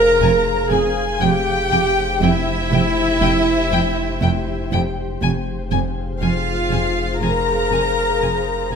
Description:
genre	cinematic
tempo	60 BPM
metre	4/4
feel	straight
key	F harmonic minor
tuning	A4 = 439 Hz
part	warm chamber violin section	second line	0.0-8.8 s	E5 to Bb5	-22 LUFS	left 4 dB	none
part	dark studio viola section	accompaniment	0.0-8.8 s	E4 to Bb4	-20 LUFS	right 2 dB	none
part	ethereal airy pad	sustained chords	0.0-8.8 s	G4 to G5	-28 LUFS	left 2 dB	ensemble chorus, built-in reverb
part	saturated sub bass	drone	0.0-8.8 s	F1	-26 LUFS	left 2 dB	none
part	rich chamber violin section	melody	0.2-8.8 s	G5 to Ab5	-27 LUFS	left 7 dB	none
part	clear chamber double bass section	bass	0.2-8.8 s	F1	-25 LUFS	right 5 dB	none
part	warm studio cello section	bass	0.2-8.8 s	F2	-24 LUFS	right 3 dB	none
room	moderate scoring stage reverb, RT60 1.6 s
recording	none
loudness	-16 LUFS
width	side -6 dB against mid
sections	0.0-8.8 A section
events	none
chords	0.0 Fm; 1.2 C/F; 5.2 Fm

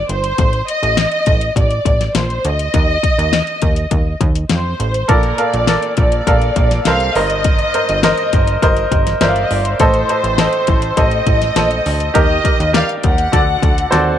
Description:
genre	piano-driven pop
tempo	102 BPM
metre	4/4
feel	straight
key	unclear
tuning	A4 = 440 Hz
part	dark studio violin section	melody	0.0-14.2 s	Bb4 to F#5	-18 LUFS	equal	slapback echo
part	plucky analog bass	bass	0.0-14.2 s	G1 to F2	-19 LUFS	right 1 dB	none
part	pop drum kit	drums	0.1-14.1 s	hi-hat, kick drum, snare drum	-17 LUFS	left 1 dB	none
part	bright upright piano	accompaniment	5.1-14.2 s	G2 to F5	-16 LUFS	right 1 dB	none
room	light reverb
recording	1960s-style stereo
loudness	-12 LUFS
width	side -10 dB against mid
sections	0.0-14.2 A section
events	drum fill 13.9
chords	0.4 Adim; 5.1 Bbmaj7; 7.2 Cm7/G; 9.8 Adim; 12.2 Eb; 13.3 D

